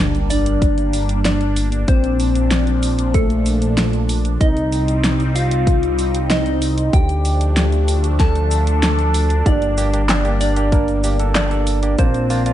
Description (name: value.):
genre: synthwave.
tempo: 95 BPM.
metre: 4/4.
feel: straight.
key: G minor.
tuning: A4 = 441 Hz.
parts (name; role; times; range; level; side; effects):
expressive synth lead; melody; 0.0-12.5 s; A3 to A4; -22 LUFS; equal; lush chorus, tape echo.
soft synth bell; second line; 0.0-12.5 s; A4 to A5; -28 LUFS; left 2 dB; chorus, phaser, digital delay.
phased analog pad; sustained chords; 0.0-12.5 s; Bb2 to Eb4; -26 LUFS; equal; phaser, chorus, sidechain pumping.
chorused synth bass; bass; 0.0-12.5 s; G1 to D2; -18 LUFS; equal; sidechain pumping.
sub drop; sound effects; 0.0-1.9 s; none; -29 LUFS; equal; none.
pop drum kit; drums; 0.1-12.5 s; cabasa, handclaps, hi-hat, snare drum; -23 LUFS; equal; none.
electronic kick drum; drums; 0.6-12.1 s; none; -16 LUFS; equal; none.
barky tine electric piano; stabs; 9.5-12.5 s; Bb3 to Bb4; -25 LUFS; right 4 dB; digital delay.
room: digital ambience.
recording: nothing above 10.9 kHz.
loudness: -15 LUFS.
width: side -12 dB against mid.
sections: 0.0-12.5 A section.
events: impact 0.0-1.9.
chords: 0.0 Gm; 1.9 Bb; 4.4 Cm; 6.9 Dm; 9.5 Gm; 12.0 Bb.